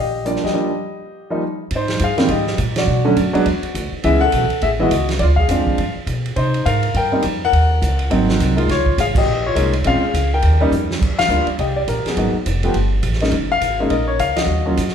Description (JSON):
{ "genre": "jazz piano trio", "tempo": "207 BPM", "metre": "4/4", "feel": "swing 60% on 8ths", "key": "unclear", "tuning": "A4 = 440 Hz", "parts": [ { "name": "warm grand piano", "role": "melody", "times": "0.0-14.9 s", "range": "D3 to G5", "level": "-18 LUFS", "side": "left 1 dB", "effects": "none" }, { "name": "upright bass", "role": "bass", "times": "0.0-14.9 s", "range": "F1 to C3", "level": "-19 LUFS", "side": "equal", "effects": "none" }, { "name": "vintage drum kit", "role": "drums", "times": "0.3-14.9 s", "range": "crash cymbal, hi-hat, kick drum, ride cymbal, snare drum", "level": "-24 LUFS", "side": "right 3 dB", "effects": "none" } ], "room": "moderate large studio reverb, RT60 1.2 s", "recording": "band playing live in one room", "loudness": "-15 LUFS", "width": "side -8 dB against mid", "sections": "0.0-1.7 A section; 1.7-11.0 B section; 11.0-14.9 A section", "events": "break 0.5-1.7; band accent 2.7, 9.1, 11.1, 14.3; drum fill 10.7", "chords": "0.0 Ebmaj9; 1.7 Abmaj7; 2.9 Bm; 3.5 Dadd9; 4.0 Amaj9; 5.2 Dm7b5; 5.8 G; 6.4 Cm7; 7.5 Ebm7; 8.1 Ab7; 8.7 Db69; 9.8 Bbm7; 10.4 Eb; 11.0 Ebmaj9; 12.2 Abm7; 12.7 Gsus2; 13.3 Gb69" }